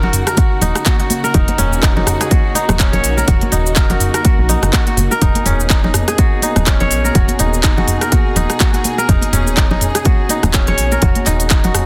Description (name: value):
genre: afro house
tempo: 124 BPM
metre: 4/4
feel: swing 57% on 16ths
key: unclear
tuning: A4 = 440 Hz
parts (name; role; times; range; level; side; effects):
- warm studio string section; sustained chords; 0.0-11.9 s; Cb3 to Ab4; -27 LUFS; equal; sidechain pumping
- kora; arpeggios; 0.0-11.9 s; Db4 to Db5; -22 LUFS; equal; sidechain pumping, tape echo
- woody FM bass; bass; 0.0-11.8 s; Eb1 to Bb1; -21 LUFS; equal; sidechain pumping
- congas; percussion; 0.0-11.7 s; none; -25 LUFS; equal; none
- house drum kit; drums; 0.1-11.9 s; handclaps, hi-hat, rim click, shaker, toms; -21 LUFS; equal; none
- electronic kick drum; drums; 0.4-11.6 s; none; -16 LUFS; equal; none
room: little or no reverb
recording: dense, heavily limited modern master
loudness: -14 LUFS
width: mono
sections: 0.0-11.9 A section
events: none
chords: 0.0 Ebm7; 5.2 Abmadd9/Eb